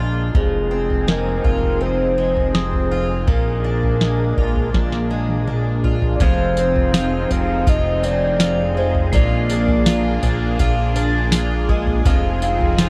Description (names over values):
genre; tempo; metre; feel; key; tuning
dream pop; 82 BPM; 4/4; straight; F dorian; A4 = 439 Hz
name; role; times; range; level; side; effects
lush unison pad; sustained chords; 0.0-12.9 s; F3 to Ab4; -28 LUFS; equal; chorus, phaser
fingerpicked twelve-string acoustic guitar; arpeggios; 0.0-12.9 s; F2 to F4; -27 LUFS; equal; lush chorus, tape echo
fat analog bass; bass; 0.0-12.9 s; F1 to Bb1; -24 LUFS; equal; none
glockenspiel with rubber mallets; texture; 0.0-10.7 s; Eb6 to C7; -38 LUFS; equal; tape echo
soft vintage rhythm box; drums; 0.3-12.9 s; kick drum, snare drum, tambourine, toms; -22 LUFS; equal; overdrive
soft octave-layered synth lead; melody; 0.4-12.9 s; Ab4 to F5; -25 LUFS; equal; chorus, phaser, tape echo
room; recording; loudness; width
digital ambience; dark, warm production; -18 LUFS; mono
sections
0.0-6.2 A section; 6.2-12.9 B section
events
drum fill 4.7-6.2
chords
0.3 Fm7; 3.3 Bb7; 6.2 Fm7; 9.1 Bb7; 12.1 Fm7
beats
| 0.35 1.08 1.81 2.54 | 3.28 4.01 4.74 5.47 | 6.20 6.93 7.67 8.40 | 9.13 9.86 10.59 11.33 | 12.06 12.79